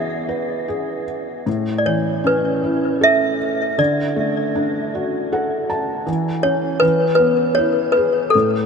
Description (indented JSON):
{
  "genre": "children's music, lullaby",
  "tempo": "78 BPM",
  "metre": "3/4",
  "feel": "rubato",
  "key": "unclear",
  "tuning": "A4 = 439 Hz",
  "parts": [
    { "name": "toy piano", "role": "melody", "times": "0.0-8.7 s", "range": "A4 to E5", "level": "-18 LUFS", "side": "equal", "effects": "ping-pong delay" },
    { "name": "felt-muted upright piano", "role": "accompaniment", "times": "0.0-8.7 s", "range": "A2 to A5", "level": "-21 LUFS", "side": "equal", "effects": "none" }
  ],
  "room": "wet huge ambient reverb, RT60 8.9 s",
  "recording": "dreamy mix soaked in reverb, nothing above 10.4 kHz",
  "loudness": "-16 LUFS",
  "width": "side -5 dB against mid",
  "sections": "0.0-8.7 A section",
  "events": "felt piano fill 5.0-6.1",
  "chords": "0.0 E7; 1.5 Aadd9; 3.8 D; 6.1 C#m/E; 6.8 E",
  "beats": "0.68 | 1.47 2.25 3.03 | 3.80 4.57 5.33 | 6.08 6.83 7.58 | 8.35"
}